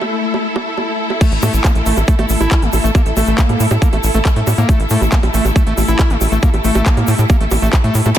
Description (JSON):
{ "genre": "psychedelic trance", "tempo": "138 BPM", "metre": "4/4", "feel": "straight", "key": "unclear", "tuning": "A4 = 441 Hz", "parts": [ { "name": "pulsing gated texture", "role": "sustained chords", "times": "0.0-8.2 s", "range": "A3 to A4", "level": "-23 LUFS", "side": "left 2 dB", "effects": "chorus, built-in reverb, sidechain pumping" }, { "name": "big-room dance drum kit", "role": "drums", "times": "0.0-8.1 s", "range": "bongos, crash cymbal, handclaps, hi-hat", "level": "-22 LUFS", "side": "right 3 dB", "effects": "none" }, { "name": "warm studio string section", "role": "texture", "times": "0.0-8.2 s", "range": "E4 to E5", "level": "-22 LUFS", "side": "equal", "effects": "sidechain pumping" }, { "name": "overdriven acid bass", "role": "riff", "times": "1.2-8.1 s", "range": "A3 to E4", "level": "-21 LUFS", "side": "moving between left 5 dB and right 5 dB", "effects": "auto-pan, sidechain pumping, digital delay" }, { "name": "electronic kick drum", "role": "drums", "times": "1.2-7.8 s", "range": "none", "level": "-12 LUFS", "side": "equal", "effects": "overdrive" }, { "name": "tube shaker", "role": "percussion", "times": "1.2-8.1 s", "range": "none", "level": "-29 LUFS", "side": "left 3 dB", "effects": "none" }, { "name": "tight sequencer bass", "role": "bass", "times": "1.3-8.1 s", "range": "A1 to A2", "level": "-15 LUFS", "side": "equal", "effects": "none" } ], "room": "light reverb", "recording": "dense, heavily limited modern master", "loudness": "-12 LUFS", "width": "side -11 dB against mid", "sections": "0.0-1.2 A section; 1.2-8.2 B section", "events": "drop 1.2-8.2", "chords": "0.0 A5" }